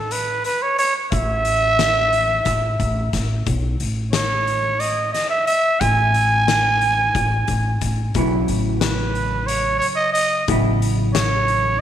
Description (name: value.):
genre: progressive instrumental, band music in an uneven meter.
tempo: 179 BPM (eighths).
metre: 7/8.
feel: straight.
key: unclear.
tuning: A4 = 437 Hz.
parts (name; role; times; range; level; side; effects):
growling trumpet; melody; 0.0-11.8 s; A4 to G#5; -18 LUFS; right 2 dB; none.
upright bass; bass; 0.0-11.8 s; A1 to B1; -22 LUFS; equal; none.
oversized low-tuned drum kit; drums; 0.1-11.6 s; hi-hat, kick drum, snare drum; -26 LUFS; left 5 dB; none.
hollow-body jazz guitar; accompaniment; 8.2-11.8 s; C#3 to E4; -24 LUFS; equal; double-tracked left and right.
room: moderate echo chamber reverb, RT60 2.0 s.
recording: 1960s-style stereo.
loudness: -17 LUFS.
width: side -10 dB against mid.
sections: 0.0-11.8 A section.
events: none.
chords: 0.0 Aadd9; 3.5 Bsus2; 5.8 N.C.; 8.2 B9sus4.